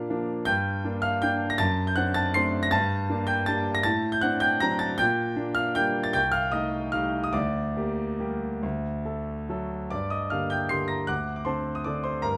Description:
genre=classical, piano waltz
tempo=135-168 BPM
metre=3/4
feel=rubato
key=G minor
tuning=A4 = 441 Hz
part: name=clear concert grand piano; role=solo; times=0.0-12.4 s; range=C2 to C7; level=-27 LUFS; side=equal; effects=none
room=light reverb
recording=close, detailed microphones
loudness=-27 LUFS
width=mono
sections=0.0-9.9 A section; 9.9-12.4 B section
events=none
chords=0.5 Gm; 1.6 D7/F#; 2.7 Gm; 3.9 D7/A; 5.0 Gm/Bb; 6.1 Am7b5/C; 7.3 Gm/D; 8.6 D; 9.9 Gm; 11.1 D7

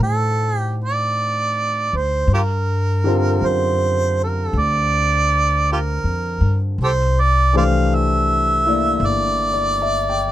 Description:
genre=jazz ballad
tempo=53 BPM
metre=4/4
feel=swing 69% on 8ths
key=unclear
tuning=A4 = 438 Hz
part: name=warm harmonica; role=melody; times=0.0-10.3 s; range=F4 to F5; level=-19 LUFS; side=right 2 dB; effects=none
part: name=clear baby grand piano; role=accompaniment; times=0.0-10.3 s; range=D3 to G5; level=-24 LUFS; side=left 3 dB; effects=none
part: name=upright bass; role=bass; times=0.0-10.3 s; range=G1 to A2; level=-20 LUFS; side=left 1 dB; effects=none
room=little or no reverb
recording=close, detailed microphones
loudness=-16 LUFS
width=side -13 dB against mid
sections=0.0-10.3 A section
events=none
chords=0.0 D7b9; 2.3 Gm7; 6.8 C13

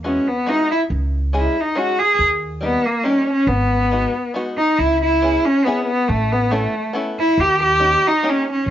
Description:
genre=musette waltz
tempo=140 BPM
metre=3/4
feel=straight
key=G# minor, C# minor from 4.8 s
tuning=A4 = 438 Hz
part: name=rich cello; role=melody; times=0.0-8.7 s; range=A3 to G#4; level=-16 LUFS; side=equal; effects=cassette tape, plate reverb
part: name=open-back banjo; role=accompaniment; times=0.0-8.5 s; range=G3 to A4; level=-25 LUFS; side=left 1 dB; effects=cassette tape, plate reverb
part: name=upright bass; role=bass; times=0.0-8.7 s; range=G#1 to E2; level=-22 LUFS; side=right 1 dB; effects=none
room=moderate booth ambience, RT60 0.2 s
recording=home recording on cassette, nothing above 7.5 kHz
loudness=-16 LUFS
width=side -11 dB against mid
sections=0.0-4.8 A section; 4.8-8.7 B section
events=none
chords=0.0 Eadd9; 0.9 C#sus2; 2.2 D#; 3.5 G#m7; 4.8 C#m7; 6.1 Aadd9; 7.4 D#7

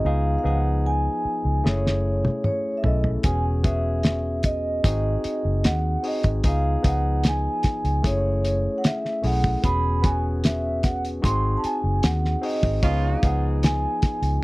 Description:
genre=lush 1970s-style soul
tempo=75 BPM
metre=4/4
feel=straight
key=unclear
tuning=A4 = 440 Hz
part: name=vibraphone with soft mallets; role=melody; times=0.0-14.4 s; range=C#5 to B#5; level=-27 LUFS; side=right 1 dB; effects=none
part: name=barky tine electric piano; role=accompaniment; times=0.0-14.4 s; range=E#3 to B4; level=-29 LUFS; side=left 2 dB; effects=none
part: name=vintage muted fingered electric bass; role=bass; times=0.0-14.4 s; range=E1 to D#2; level=-24 LUFS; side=equal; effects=none
part: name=cloth-damped thuddy drum kit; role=drums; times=1.7-14.4 s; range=hi-hat, kick drum, snare drum, toms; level=-22 LUFS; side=equal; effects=none
part: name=warm horn section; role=stabs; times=12.8-13.3 s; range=E#3 to E#4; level=-34 LUFS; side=right 5 dB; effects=tape echo
room=little or no reverb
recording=dry, close 1970s-style studio recording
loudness=-20 LUFS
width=side -21 dB against mid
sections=0.0-14.4 A section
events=drum fill 1.6-3.2; band accent 12.8-14.4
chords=0.0 C#7; 1.6 F#m9; 3.2 E6; 4.8 G#7; 6.4 C#7; 8.0 F#m9; 9.6 E6; 11.2 G#7; 12.8 C#7

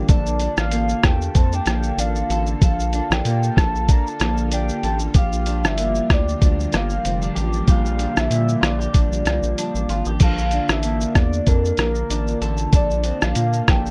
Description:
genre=indie pop, bedroom pop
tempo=95 BPM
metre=4/4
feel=swing 55% on 16ths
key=Bb lydian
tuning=A4 = 440 Hz
part: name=electric guitar through a small old amp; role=accompaniment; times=0.0-13.9 s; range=Bb2 to A4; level=-29 LUFS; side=equal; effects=subtle chorus, vibrato effect
part: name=soft string machine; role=sustained chords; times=0.0-13.9 s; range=D3 to A4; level=-33 LUFS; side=equal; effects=ensemble chorus
part: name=round analog bass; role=bass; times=0.0-13.9 s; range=F1 to Bb2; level=-25 LUFS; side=equal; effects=none
part: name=soft octave-layered synth lead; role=melody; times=0.1-13.9 s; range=Bb4 to Bb5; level=-28 LUFS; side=equal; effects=phaser, subtle chorus
part: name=lo-fi sampler-style drum kit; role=drums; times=0.1-13.9 s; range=crash cymbal, hi-hat, kick drum, rim click, shaker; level=-20 LUFS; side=equal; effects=none
room=little or no reverb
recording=dark, warm production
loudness=-20 LUFS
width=mono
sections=0.0-10.2 A section; 10.2-13.9 A section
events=none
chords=0.1 Bbmaj7; 5.1 Gm7; 10.2 Bbmaj7

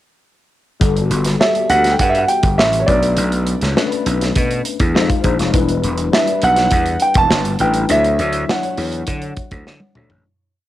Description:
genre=polished 1980s jazz-funk pop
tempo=102 BPM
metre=4/4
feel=straight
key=unclear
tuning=A4 = 438 Hz
part: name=tine electric piano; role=accompaniment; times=0.8-10.3 s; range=E3 to F5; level=-22 LUFS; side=left 8 dB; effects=ensemble chorus, cassette tape
part: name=gritty slap bass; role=bass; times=0.8-10.2 s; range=E1 to D3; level=-18 LUFS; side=equal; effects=overdrive
part: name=modern studio drum kit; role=drums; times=0.8-10.2 s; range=hi-hat, kick drum, snare drum, toms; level=-19 LUFS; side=right 1 dB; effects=none
part: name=warm baby grand piano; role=melody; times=1.4-9.9 s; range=C#5 to A5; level=-16 LUFS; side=right 2 dB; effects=cassette tape
room=light reverb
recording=home recording on cassette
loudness=-13 LUFS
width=side -14 dB against mid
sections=0.8-10.3 verse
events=tine electric piano fill 4.7-5.5; fade-out 7.9-10.3; drum fill 9.7-10.3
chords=0.8 Gmaj9; 2.9 Bm9; 5.0 Fm7; 5.5 Em7; 7.9 Dmaj9

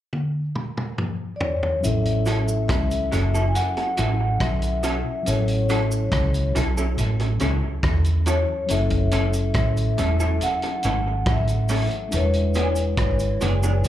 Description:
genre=lovers rock reggae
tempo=70 BPM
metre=4/4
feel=straight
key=A major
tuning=A4 = 436 Hz
part: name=vintage drum kit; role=drums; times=0.1-13.9 s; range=hi-hat, kick drum, rim click, toms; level=-27 LUFS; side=equal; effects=none
part: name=vibraphone with soft mallets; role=melody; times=1.4-13.4 s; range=C#5 to G#5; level=-27 LUFS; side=left 2 dB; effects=tape echo, slapback echo
part: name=mellow tine electric piano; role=accompaniment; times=1.8-13.9 s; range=F#3 to B4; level=-30 LUFS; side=left 4 dB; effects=medium stereo tremolo, tape echo, slapback echo
part: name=cabasa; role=percussion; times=1.8-13.9 s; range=none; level=-38 LUFS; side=right 3 dB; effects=none
part: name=vintage muted fingered electric bass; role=bass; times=1.9-13.9 s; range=E1 to E2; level=-22 LUFS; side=right 1 dB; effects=none
part: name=electric guitar through a small old amp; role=stabs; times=2.3-13.7 s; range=E3 to A4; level=-28 LUFS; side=right 1 dB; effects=ensemble chorus, tape echo, slapback echo
room=small room ambience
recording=live gig heard through the venue's PA, club reverb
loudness=-20 LUFS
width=side -12 dB against mid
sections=0.0-1.8 A section; 1.8-13.9 B section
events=drum fill 0.1-1.8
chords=0.0 N.C.; 1.8 A6; 8.7 F#m7; 12.1 E7

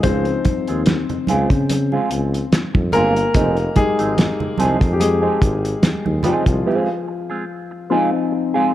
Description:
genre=lush 1970s-style soul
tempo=72 BPM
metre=4/4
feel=swing 54% on 16ths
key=F minor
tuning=A4 = 440 Hz
part: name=warm concert grand piano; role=accompaniment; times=0.0-8.7 s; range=F3 to C5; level=-21 LUFS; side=left 4 dB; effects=none
part: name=mellow electric guitar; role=riff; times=0.0-8.7 s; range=F3 to Ab4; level=-22 LUFS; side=right 4 dB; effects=wah, spring reverb
part: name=warm tuba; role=bass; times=0.0-6.6 s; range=F1 to Db3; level=-21 LUFS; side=equal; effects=none
part: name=cloth-damped thuddy drum kit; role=drums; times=0.0-6.6 s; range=hi-hat, kick drum, snare drum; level=-18 LUFS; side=equal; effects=none
part: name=congas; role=percussion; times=0.0-6.4 s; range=none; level=-26 LUFS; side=right 4 dB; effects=none
room=light reverb, studio ambience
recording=dark, warm production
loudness=-16 LUFS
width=side -13 dB against mid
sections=0.0-8.7 A section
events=grand piano solo 0.0-8.7; break 6.7-8.7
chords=0.0 Dbmaj7; 3.4 Fm7

